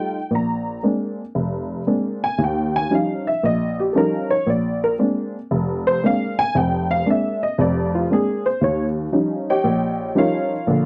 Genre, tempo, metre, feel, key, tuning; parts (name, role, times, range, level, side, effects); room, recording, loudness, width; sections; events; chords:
solo jazz; 116 BPM; 4/4; swing 68% on 8ths; Bb mixolydian; A4 = 436 Hz
honky-tonk upright piano; solo; 0.0-10.9 s; F1 to Bb5; -21 LUFS; equal
light reverb; dry, close 1970s-style studio recording; -21 LUFS; mono
0.3-10.9 A section
honky-tonk piano solo 0.0-10.9
0.3 Bb9; 2.4 Eb9; 4.5 Bb9; 8.6 Eb9